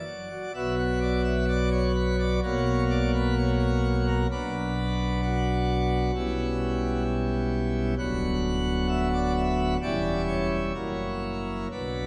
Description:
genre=classical, chorale-style piece for pipe organ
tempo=65 BPM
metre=4/4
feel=rubato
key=B minor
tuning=A4 = 440 Hz
part: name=pipe organ, plenum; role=solo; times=0.0-12.1 s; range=D1 to F#5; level=-27 LUFS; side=equal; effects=none
room=wet church reverb, RT60 2.8 s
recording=none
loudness=-27 LUFS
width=mono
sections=0.6-12.1 A section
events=none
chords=0.0 N.C.; 0.6 B5; 2.4 F#/B; 4.3 Bm; 6.1 C#dim/B; 8.0 Bm/D; 9.8 C#dim/E; 10.7 F#7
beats=| 0.56 1.50 2.44 3.38 | 4.31 5.23 6.15 7.07 | 7.98 8.89 9.81 10.74 | 11.71

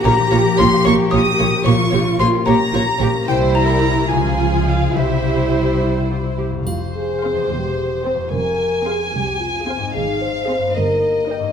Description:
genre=cinematic, playful, whimsical film cue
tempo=73 BPM (dotted quarters)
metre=6/8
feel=straight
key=F minor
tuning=A4 = 438 Hz
part: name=warm chamber violin section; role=melody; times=0.0-11.5 s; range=Ab4 to Ab5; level=-25 LUFS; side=left 1 dB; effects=none
part: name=warm chamber violin section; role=second line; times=0.0-11.5 s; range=Eb5 to Eb6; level=-23 LUFS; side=left 1 dB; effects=none
part: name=warm chamber viola section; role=accompaniment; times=0.0-11.5 s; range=F3 to C5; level=-22 LUFS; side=right 3 dB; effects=none
part: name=concert harp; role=arpeggios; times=0.0-11.5 s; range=E2 to Bb5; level=-22 LUFS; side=left 8 dB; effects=none
part: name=dark chamber cello section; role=bass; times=0.0-11.4 s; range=C2 to G4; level=-23 LUFS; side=right 2 dB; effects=none
part: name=xylophone with soft rubber mallets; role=melody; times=0.1-5.8 s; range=E5 to Eb6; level=-23 LUFS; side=left 5 dB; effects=none
part: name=warm chamber double bass section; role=bass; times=0.1-11.4 s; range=E1 to Db2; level=-22 LUFS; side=right 4 dB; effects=none
part: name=dark French horn section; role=sustained chords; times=6.7-11.5 s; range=C4 to Eb5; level=-21 LUFS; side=left 1 dB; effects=none
part: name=triangle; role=percussion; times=6.7-7.7 s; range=none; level=-37 LUFS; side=right 2 dB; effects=none
room=wet recital hall reverb, RT60 1.3 s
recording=none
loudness=-15 LUFS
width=side -7 dB against mid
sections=0.0-6.7 A section; 6.7-11.5 B section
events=none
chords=0.0 Bbm; 3.3 C7; 4.1 Db; 5.0 C; 6.7 Fm; 7.5 C/E; 8.3 Fm; 10.0 Ab; 10.8 Eb/G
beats=| 0.04 0.85 | 1.66 2.46 | 3.28 4.12 | 4.96 5.82 | 6.67 7.50 | 8.31 9.13 | 9.95 10.75

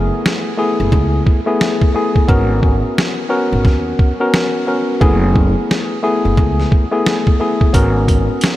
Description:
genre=hip hop, boom-bap hip-hop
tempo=88 BPM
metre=4/4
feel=swing 62% on 16ths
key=unclear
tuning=A4 = 440 Hz
part: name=tine electric piano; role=accompaniment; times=0.0-8.6 s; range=A3 to A#4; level=-16 LUFS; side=left 1 dB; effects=cassette tape, high-pass filter, low-pass filter
part: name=upright bass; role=bass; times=0.0-8.3 s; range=F#1 to D#2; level=-16 LUFS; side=equal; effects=none
part: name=trip hop sampler-style drum kit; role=drums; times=0.3-8.6 s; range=hi-hat, kick drum, snare drum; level=-15 LUFS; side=equal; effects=none
room=moderate huge ambient reverb, RT60 7.7 s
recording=dreamy mix soaked in reverb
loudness=-12 LUFS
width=side -15 dB against mid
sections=0.0-8.6 A section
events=break 0.0-7.7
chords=0.0 F#m11 (rootless); 2.3 G#m11; 5.0 F#m11; 7.7 G#m11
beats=0.24 0.92 1.60 | 2.29 2.97 3.65 4.33 | 5.01 5.70 6.38 7.06 | 7.74 8.42

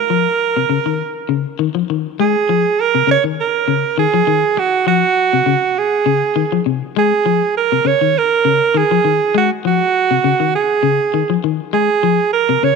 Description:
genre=afrobeat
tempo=101 BPM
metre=4/4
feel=swing 55% on 16ths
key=Bb minor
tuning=A4 = 442 Hz
part: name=bright alto saxophone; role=melody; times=0.0-12.8 s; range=Gb4 to Db5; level=-14 LUFS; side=right 7 dB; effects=none
part: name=electric guitar at the edge of break-up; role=arpeggios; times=0.1-12.7 s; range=C3 to Ab3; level=-18 LUFS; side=left 15 dB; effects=spring reverb
room=moderate plate reverb, RT60 2.6 s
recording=1960s-style stereo with parts hard left and right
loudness=-13 LUFS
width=side -4 dB against mid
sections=0.0-2.2 A section; 2.2-12.8 B section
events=none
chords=0.0 Bbm11/C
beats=0.41 1.00 1.60 | 2.19 2.79 3.38 3.98 | 4.57 5.17 5.76 6.36 | 6.96 7.55 8.15 8.74 | 9.34 9.93 10.53 11.13 | 11.72 12.32

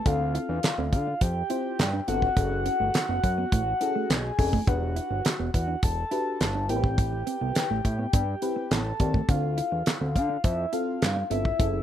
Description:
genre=early-eighties boogie funk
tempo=104 BPM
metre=4/4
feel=straight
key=unclear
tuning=A4 = 440 Hz
part: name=soft octave-layered synth lead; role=melody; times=0.0-11.8 s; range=E5 to A5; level=-30 LUFS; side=left 2 dB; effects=chorus, phaser, slapback echo
part: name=FM electric piano with soft pad layer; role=accompaniment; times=0.1-11.8 s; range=C4 to D5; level=-32 LUFS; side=left 3 dB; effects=chorus
part: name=fat analog bass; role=bass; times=0.1-11.8 s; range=E1 to D3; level=-29 LUFS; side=equal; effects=none
part: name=damped 70s drum kit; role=drums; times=0.1-11.7 s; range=handclaps, hi-hat, kick drum, snare drum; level=-25 LUFS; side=right 1 dB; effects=none
part: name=mellow electric guitar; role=riff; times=0.2-11.8 s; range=A3 to E4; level=-34 LUFS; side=right 5 dB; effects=wide subtle chorus
room=light reverb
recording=rough home demo mix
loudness=-24 LUFS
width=side -10 dB against mid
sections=0.0-11.8 A section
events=none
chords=0.1 Dm9; 2.4 F#m9; 4.7 Em9; 6.7 Am9; 9.3 Dm9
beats=| 0.06 0.64 1.21 1.79 | 2.37 2.94 3.52 4.10 | 4.67 5.25 5.83 6.40 | 6.98 7.56 8.13 8.71 | 9.29 9.87 10.44 11.02 | 11.60

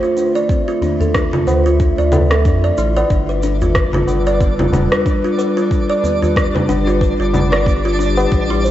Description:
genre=organic downtempo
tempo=92 BPM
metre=4/4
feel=swing 57% on 16ths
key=unclear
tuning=A4 = 441 Hz
part: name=warbly tape-like pad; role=sustained chords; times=0.0-8.7 s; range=D3 to E5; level=-22 LUFS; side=equal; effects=chorus, built-in reverb, sidechain pumping
part: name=kalimba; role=arpeggios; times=0.0-8.7 s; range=B3 to D5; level=-18 LUFS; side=equal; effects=tape echo
part: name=electronic cabasa, rim click and congas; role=drums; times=0.0-8.7 s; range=none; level=-20 LUFS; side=equal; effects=overdrive
part: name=tabla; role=percussion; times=0.2-8.3 s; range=none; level=-24 LUFS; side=left 1 dB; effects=none
part: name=electronic kick drum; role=drums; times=0.5-8.5 s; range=none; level=-18 LUFS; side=equal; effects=none
part: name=warm sub bass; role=bass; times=1.5-8.7 s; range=D1 to F2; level=-18 LUFS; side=equal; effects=none
part: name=twinkling granular texture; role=texture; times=3.4-8.7 s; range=D4 to D5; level=-26 LUFS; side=right 1 dB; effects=built-in reverb
room=moderate lush hall reverb, RT60 2.2 s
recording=worn, warbling old tape, cassette tape, warbly pitch drift, nothing above 7.9 kHz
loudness=-13 LUFS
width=side -12 dB against mid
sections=0.0-8.7 A section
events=none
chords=0.0 Dmadd9; 3.1 G9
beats=| 0.49 1.15 1.80 2.45 | 3.10 3.76 4.41 5.06 | 5.71 6.36 7.02 7.67 | 8.32

